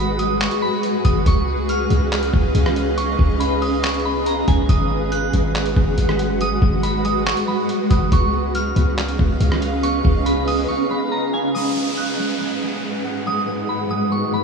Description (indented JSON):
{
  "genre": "hip hop, atmospheric cloud-rap",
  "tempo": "140 BPM",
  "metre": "4/4",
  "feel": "half-time",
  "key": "G# dorian",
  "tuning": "A4 = 440 Hz",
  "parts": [
    { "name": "soft synth bell", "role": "melody", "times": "0.0-14.4 s", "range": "G#5 to F#6", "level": "-25 LUFS", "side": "right 2 dB", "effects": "chorus, phaser, tape echo" },
    { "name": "granular cloud pad", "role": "sustained chords", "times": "0.0-14.4 s", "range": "G#2 to F#5", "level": "-21 LUFS", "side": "equal", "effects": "built-in reverb, sidechain pumping" },
    { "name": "concert harp", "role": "arpeggios", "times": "0.0-0.3, 4.7-14.4 s", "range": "G#3 to F#5", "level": "-30 LUFS", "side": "left 2 dB", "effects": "tape echo" },
    { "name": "warm 808-style bass", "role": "bass", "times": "0.0-10.7 s", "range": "F#1 to C#2", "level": "-21 LUFS", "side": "equal", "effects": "none" },
    { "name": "trip hop sampler-style drum kit", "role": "drums", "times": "0.2-10.6 s", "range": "handclaps, hi-hat, kick drum, rim click", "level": "-22 LUFS", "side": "equal", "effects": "none" },
    { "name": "downlifter", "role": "sound effects", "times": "11.5-14.4 s", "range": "none", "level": "-28 LUFS", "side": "equal", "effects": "none" }
  ],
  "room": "wet huge ambient reverb, RT60 5.9 s",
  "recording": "dreamy mix soaked in reverb, studio ambience",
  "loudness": "-17 LUFS",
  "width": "side -5 dB against mid",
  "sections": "0.0-11.5 A section; 11.5-14.4 B section",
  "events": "break 10.7-11.5",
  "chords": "0.0 G#m7; 1.3 C#7; 4.7 G#m7; 8.1 C#7; 11.5 G#m7",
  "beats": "0.41 0.83 | 1.26 1.69 2.12 2.55 | 2.98 3.40 3.83 4.26 | 4.69 5.12 5.55 5.98 | 6.41 6.83 7.26 7.69 | 8.12 8.55 8.98 9.40 | 9.83 10.26 10.69 11.12 | 11.55 11.98 12.40 12.83 | 13.26 13.69 14.12"
}